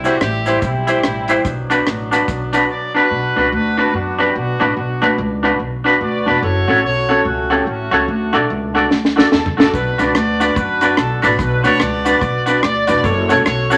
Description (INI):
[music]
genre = ska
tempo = 145 BPM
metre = 4/4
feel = swing 62% on 8ths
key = B phrygian, B minor from 3.1 s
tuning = A4 = 440 Hz
[part]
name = warm horn section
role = melody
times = 0.0-13.8 s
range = F#3 to D5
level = -22 LUFS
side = equal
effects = none
[part]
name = twangy electric guitar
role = accompaniment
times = 0.0-13.8 s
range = D4 to D5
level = -20 LUFS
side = equal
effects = tremolo, tape echo
[part]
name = dark upright piano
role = stabs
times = 0.0-13.8 s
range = C#4 to C5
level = -23 LUFS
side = equal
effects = none
[part]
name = upright bass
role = bass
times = 0.0-13.8 s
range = E1 to F#2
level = -24 LUFS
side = equal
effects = none
[part]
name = cabasa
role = percussion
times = 0.0-2.6, 9.7-13.8 s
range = none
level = -46 LUFS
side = equal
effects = tape echo
[part]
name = deep reggae drum kit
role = drums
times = 0.1-2.6, 8.9-13.8 s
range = hi-hat, kick drum, rim click, snare drum, toms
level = -20 LUFS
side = equal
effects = tape echo
[sound]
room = wet studio reverb, RT60 0.8 s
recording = none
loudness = -16 LUFS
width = mono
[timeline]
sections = 0.0-3.1 A section; 3.1-13.8 B section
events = drum fill 8.9-9.7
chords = 0.0 C; 1.4 Bm; 6.4 F#m; 8.1 D; 9.7 Bm; 13.0 F#m